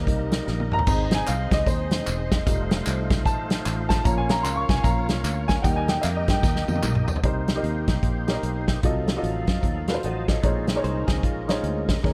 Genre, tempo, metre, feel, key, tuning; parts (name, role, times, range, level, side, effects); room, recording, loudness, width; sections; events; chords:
uptempo gospel; 150 BPM; 4/4; swing 62% on 8ths; A4 = 439 Hz
warm upright piano; accompaniment; 0.0-12.1 s; Bb2 to Db6; -30 LUFS; equal
tonewheel organ; sustained chords; 0.0-12.1 s; F3 to A5; -36 LUFS; equal; slow rotary speaker, overdrive, chorus vibrato
warm studio string section; sustained chords; 0.0-12.1 s; Eb3 to G5; -38 LUFS; equal
fingered electric bass; bass; 0.0-12.1 s; Fb1 to G2; -30 LUFS; equal
natural country drum kit; drums; 0.1-12.1 s; crash cymbal, hi-hat, kick drum, snare drum, toms; -26 LUFS; equal
tambourine and handclaps; percussion; 0.9-7.2 s; -39 LUFS; equal
direct-recorded clean electric guitar; second line; 10.8-11.9 s; Ab3 to C5; -36 LUFS; equal
light reverb, small room ambience; dark, warm production; -24 LUFS; mono
0.0-7.2 A section; 7.2-12.1 B section
upright piano solo 0.0-7.2; drum fill 0.5-0.9, 6.4-7.2; tonewheel organ fill 9.8-10.4
0.0 Eb; 0.9 Ab; 2.5 F7; 4.1 Bbm; 5.6 Eb; 7.2 Cm7; 8.8 F7b9; 10.4 Bbm11